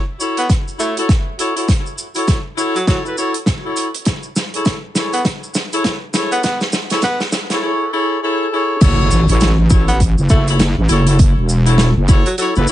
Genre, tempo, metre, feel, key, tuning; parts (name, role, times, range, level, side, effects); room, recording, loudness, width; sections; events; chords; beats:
glitch hop; 101 BPM; 4/4; swing 60% on 16ths; F# minor; A4 = 440 Hz
warm horn section; stabs; 0.2-12.7 s; E4 to C#5; -20 LUFS; left 1 dB; sidechain pumping, digital delay
cabasa; percussion; 0.2-12.7 s; -27 LUFS; right 2 dB
clear tenor saxophone; melody; 0.4-12.5 s; F#3 to B3; -22 LUFS; equal; digital delay
natural country drum kit; drums; 0.4-12.5 s; crash cymbal, hi-hat, rim click, snare drum; -20 LUFS; right 1 dB
electronic kick drum; drums; 0.5-12.2 s; -14 LUFS; equal
wobble bass; bass; 8.8-12.7 s; E1 to A1; -13 LUFS; equal; chorus, tube saturation
impact; sound effects; 8.9-11.2 s; -22 LUFS; equal
light reverb; vinyl crackle, high-pass filter, nothing above 10.3 kHz; -13 LUFS; side -14 dB against mid
0.0-8.8 A section; 8.8-12.7 B section
build-up 0.0-8.8; drum fill 0.0-7.6; drop 8.8-12.7; impact 8.8-11.2
0.0 F#m7; 4.1 Amaj7; 8.8 F#m7
0.50 1.09 | 1.69 2.28 2.87 3.47 | 4.06 4.66 5.25 5.84 | 6.44 7.03 7.63 8.22 | 8.81 9.41 10.00 10.60 | 11.19 11.79 12.38